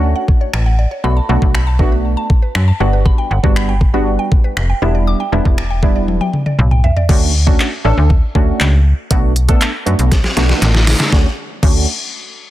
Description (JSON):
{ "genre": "dance-pop", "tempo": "119 BPM", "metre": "4/4", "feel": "straight", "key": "D major", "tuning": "A4 = 444 Hz", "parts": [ { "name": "wavetable chord stab", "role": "accompaniment", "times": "0.0-11.9 s", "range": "G3 to A4", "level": "-19 LUFS", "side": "right 2 dB", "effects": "sidechain pumping, low-pass filter" }, { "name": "slap-like FM bass", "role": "bass", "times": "0.0-11.9 s", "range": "E1 to F#2", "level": "-14 LUFS", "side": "equal", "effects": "sidechain pumping" }, { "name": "mallet-like synth pluck", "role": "arpeggios", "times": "0.2-7.1 s", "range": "B4 to D6", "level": "-24 LUFS", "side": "equal", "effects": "chorus, phaser, sidechain pumping, tape echo" }, { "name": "smooth R&B drum kit", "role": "drums", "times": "0.3-11.7 s", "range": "crash cymbal, finger snaps, handclaps, hi-hat, kick drum, snare drum, toms", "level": "-14 LUFS", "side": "equal", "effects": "soft clipping on snare" } ], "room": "little or no reverb", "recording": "dense, heavily limited modern master", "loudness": "-11 LUFS", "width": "side -14 dB against mid", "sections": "0.0-7.1 A section; 7.1-11.1 B section; 11.1-12.5 C section", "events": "drum fill 6.1-7.1, 10.1-11.1; filter sweep on synth stab 7.1-11.1", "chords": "0.0 Dmaj7; 1.0 Bm7; 2.8 Gmaj7; 4.8 Em7; 7.1 Dmaj7; 9.1 Bm7; 11.1 Dmaj7" }